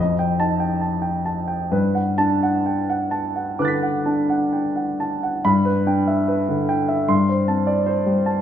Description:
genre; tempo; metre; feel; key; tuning
classical, impressionist solo piano; 62-78 BPM; 4/4; rubato; G major; A4 = 440 Hz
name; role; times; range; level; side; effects
warm grand piano; solo; 0.0-8.4 s; F2 to B6; -18 LUFS; equal; none
room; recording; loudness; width
wet recital hall reverb, RT60 1.3 s; none; -18 LUFS; side -9 dB against mid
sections
0.0-5.5 A section; 5.5-8.4 A section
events
none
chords
0.0 F9; 1.7 Gmaj9; 5.5 G6; 7.1 Am7/G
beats
0.82 | 1.73 2.67 3.60 4.54 | 5.46 6.29 7.10 7.89

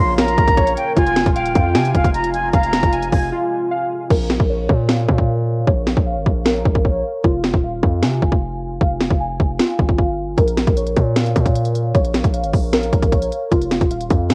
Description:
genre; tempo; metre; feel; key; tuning
hip hop, trap; 153 BPM; 4/4; half-time; Bb dorian; A4 = 440 Hz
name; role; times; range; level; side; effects
breathy concert flute; second line; 0.0-3.3 s; F5 to C6; -22 LUFS; equal; analog delay
deep dark ambient pad; sustained chords; 0.0-4.1 s; C3 to F4; -32 LUFS; equal; chorus, built-in reverb
warbly lo-fi synth keys; arpeggios; 0.0-14.3 s; F4 to Ab5; -24 LUFS; equal; chorus, low-pass filter, analog delay
hard-hitting 808-style bass; bass; 0.0-14.3 s; Eb1 to C3; -23 LUFS; equal; none
trap drum kit; drums; 0.2-14.3 s; crash cymbal, hi-hat, kick drum, snare drum; -20 LUFS; equal; cassette tape
room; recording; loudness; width
digital ambience; home recording on cassette; -18 LUFS; mono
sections
0.0-4.1 A section; 4.1-14.3 B section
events
break 3.3-4.1; hi-hats muted 4.1-10.4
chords
0.0 Bbm; 1.0 Fm; 4.1 Bbm; 7.2 Fm; 10.4 Bbm; 13.5 N.C.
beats
0.18 0.57 | 0.97 1.36 1.75 2.14 | 2.54 2.93 3.32 3.71 | 4.10 4.50 4.89 5.28 | 5.67 6.07 6.46 6.85 | 7.24 7.63 8.03 8.42 | 8.81 9.20 9.59 9.99 | 10.38 10.77 11.16 11.55 | 11.95 12.34 12.73 13.12 | 13.52 13.91 14.30

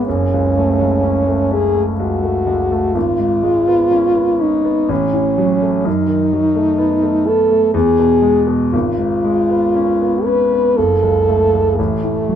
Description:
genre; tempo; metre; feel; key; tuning
classical, romantic duo for French horn and grand piano; 58-65 BPM; 3/4; rubato; unclear; A4 = 440 Hz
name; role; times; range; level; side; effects
mellow French horn; melody; 0.0-12.4 s; A3 to B4; -15 LUFS; equal; none
clear concert grand piano; accompaniment; 0.0-12.4 s; F#1 to C#4; -17 LUFS; equal; none
room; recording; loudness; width
light reverb; minimal, uncompressed stereo recording; -13 LUFS; side -9 dB against mid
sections
0.0-12.4 A section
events
none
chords
0.1 F#m; 3.0 C#7/G#; 4.9 F#m/A; 5.9 B7/F#; 7.7 E; 8.7 C#7/G#; 10.8 F#m; 11.8 N.C.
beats
| 0.06 1.04 2.00 | 2.96 3.92 4.90 | 5.87 6.80 7.74 | 8.73 9.76 10.77 | 11.78

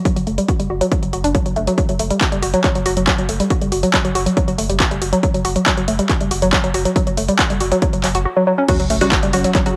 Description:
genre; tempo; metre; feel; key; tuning
driving peak-time techno; 139 BPM; 4/4; straight; F# phrygian; A4 = 440 Hz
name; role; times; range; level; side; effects
woody wave-folded pluck; riff; 0.1-9.7 s; F#3 to F#4; -21 LUFS; equal; chorus, cassette tape, sidechain pumping, analog delay
electronic kick drum; drums; 0.1-9.6 s; none; -21 LUFS; equal; overdrive, studio ambience, cassette tape
techno drum kit; drums; 0.1-9.7 s; crash cymbal, handclaps, hi-hat; -24 LUFS; equal; overdrive, sidechain pumping on hats, studio ambience, cassette tape, sidechain pumping on cymbals
warm sub bass; bass; 0.2-9.8 s; F#1; -26 LUFS; equal; overdrive, sidechain pumping, low-pass filter
filtered dub chord stab; stabs; 8.7-9.8 s; C#3 to F#4; -22 LUFS; equal; phaser, analog chorus, cassette tape, sidechain pumping, analog delay
sub drop; sound effects; 8.7-9.8 s; none; -30 LUFS; equal; none
room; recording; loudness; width
moderate spring reverb, RT60 1.8 s, digital ambience; home recording on cassette; -17 LUFS; mono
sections
0.0-8.7 A section; 8.7-9.8 B section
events
filter sweep on synth arpeggio sound 0.0-8.7; drop 8.7-9.8; impact 8.7-9.8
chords
0.0 F#5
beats
| 0.05 0.48 0.92 1.35 | 1.78 2.21 2.64 3.07 | 3.50 3.94 4.37 4.80 | 5.23 5.66 6.09 6.53 | 6.96 7.39 7.82 8.25 | 8.69 9.12 9.55

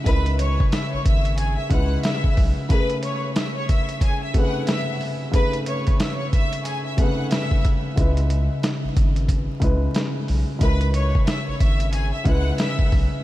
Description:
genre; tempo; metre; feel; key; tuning
hip hop, boom-bap hip-hop; 91 BPM; 4/4; swing 60% on 16ths; C# minor; A4 = 440 Hz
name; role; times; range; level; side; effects
dark upright piano; accompaniment; 0.0-13.2 s; B#2 to B4; -25 LUFS; left 1 dB; none
rich studio violin section; melody; 0.1-12.9 s; G#4 to F#6; -28 LUFS; left 1 dB; tape echo
soft dub sub bass; bass; 0.1-2.5, 8.0-13.1 s; G#1 to C#2; -22 LUFS; equal; none
boom bap sampler-style drum kit; drums; 0.1-13.1 s; hi-hat, kick drum, snare drum; -22 LUFS; equal; none
room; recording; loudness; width
light reverb, studio ambience; vinyl crackle; -19 LUFS; side -15 dB against mid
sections
0.0-13.2 A section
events
none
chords
0.0 C#m7; 2.7 Amaj7; 8.0 C#m7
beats
| 0.07 0.72 1.38 2.04 | 2.70 3.36 4.02 4.68 | 5.34 6.00 6.66 7.32 | 7.98 8.64 9.29 9.96 | 10.61 11.27 11.93 12.59

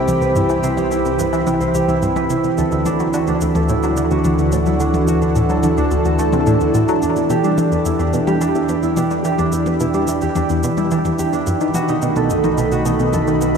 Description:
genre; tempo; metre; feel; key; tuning
ambient, sequencer-driven space music; 108 BPM; 4/4; straight; E minor; A4 = 440 Hz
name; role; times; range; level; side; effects
lush unison pad; sustained chords; 0.0-13.6 s; D#3 to B5; -19 LUFS; equal; chorus, shimmer reverb
concert harp; arpeggios; 0.0-13.6 s; D4 to C5; -21 LUFS; right 3 dB; auto-pan, tape echo, shimmer reverb
analog drone; bass; 0.0-13.6 s; B1 to E2; -26 LUFS; left 1 dB; chorus
tight sequenced synth; riff; 0.1-13.6 s; C2 to A3; -21 LUFS; equal; chorus, tape echo
electronic toms and cabasa; percussion; 0.1-13.6 s; none; -26 LUFS; left 1 dB; tape echo
room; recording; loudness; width
wet huge ambient reverb, RT60 7.5 s; none; -15 LUFS; side -6 dB against mid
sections
0.0-13.6 A section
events
none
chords
0.0 Cmaj7; 2.6 Dadd9; 7.0 Em7; 11.5 B7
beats
| 0.36 0.91 1.47 2.02 | 2.58 3.14 3.69 4.25 | 4.80 5.36 5.91 6.47 | 7.03 7.58 8.14 8.69 | 9.25 9.80 10.36 10.91 | 11.47 12.03 12.58 13.14

